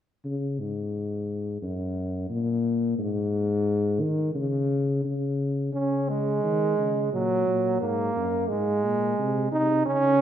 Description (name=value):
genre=classical, imitative canzona for brass ensemble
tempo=87 BPM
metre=4/4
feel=straight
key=unclear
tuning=A4 = 440 Hz
part: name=warm tuba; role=bass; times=0.2-10.2 s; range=Gb2 to Eb3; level=-26 LUFS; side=left 2 dB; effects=none
part: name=warm trombone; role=accompaniment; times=5.7-10.2 s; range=Gb3 to Eb4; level=-23 LUFS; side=right 3 dB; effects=none
room=wet scoring stage reverb, RT60 1.9 s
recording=minimal, uncompressed stereo recording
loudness=-24 LUFS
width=side -10 dB against mid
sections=0.2-5.7 A section; 5.7-10.2 B section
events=none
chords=0.2 Db5; 1.6 Gb; 3.0 Ab5; 4.3 N.C.; 5.7 Db5; 7.1 Gb/Bb; 8.5 Ab